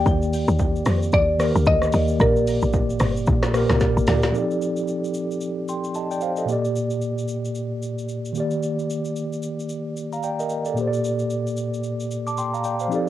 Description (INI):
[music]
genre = amapiano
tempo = 112 BPM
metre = 4/4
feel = swing 58% on 16ths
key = Bb major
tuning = A4 = 440 Hz
[part]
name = mallet-like synth pluck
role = melody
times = 0.0-4.0 s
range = Bb4 to G5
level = -23 LUFS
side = left 1 dB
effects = chorus, cassette tape, tape echo
[part]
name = mellow tine electric piano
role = accompaniment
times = 0.0-13.1 s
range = Bb2 to D6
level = -23 LUFS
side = equal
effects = medium stereo tremolo, cassette tape
[part]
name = tight log drum bass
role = bass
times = 0.0-4.3 s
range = G1 to F2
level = -22 LUFS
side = equal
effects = none
[part]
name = deep house drum kit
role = drums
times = 0.1-13.1 s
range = hi-hat, kick drum, rim click, shaker, snare drum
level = -26 LUFS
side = equal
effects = cassette tape
[sound]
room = light reverb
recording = home recording on cassette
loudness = -20 LUFS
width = side -13 dB against mid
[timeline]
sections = 0.0-4.3 A section; 4.3-13.1 B section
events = drop 0.0-4.3; drum fill 3.8-4.3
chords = 0.0 Ebmaj7; 2.2 Bb6; 4.3 F13; 6.5 Bb6; 8.4 Ebmaj7; 10.8 Bb6